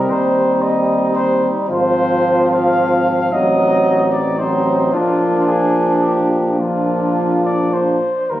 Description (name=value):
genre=classical, brass quintet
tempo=104-114 BPM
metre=3/4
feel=rubato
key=unclear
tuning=A4 = 440 Hz
part: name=mellow trumpet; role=melody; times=0.0-8.4 s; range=F4 to F5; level=-20 LUFS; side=left 2 dB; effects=none
part: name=mellow flugelhorn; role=second line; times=0.0-8.4 s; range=D4 to F4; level=-21 LUFS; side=right 2 dB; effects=none
part: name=bright trombone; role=accompaniment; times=0.0-8.4 s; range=F3 to G3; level=-19 LUFS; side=right 1 dB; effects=none
part: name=warm French horn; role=accompaniment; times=0.0-8.4 s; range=Bb3 to C4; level=-22 LUFS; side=left 2 dB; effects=none
part: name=mellow tuba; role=bass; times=0.0-8.4 s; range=Ab1 to Eb2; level=-22 LUFS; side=equal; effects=none
room=moderate recital hall reverb, RT60 1.8 s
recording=recorded on a phone in the room, studio ambience, compression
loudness=-13 LUFS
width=side -14 dB against mid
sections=0.0-8.3 A section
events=none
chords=0.1 Cm/Eb; 1.7 Fm/Ab; 3.3 Adim7; 4.9 Bb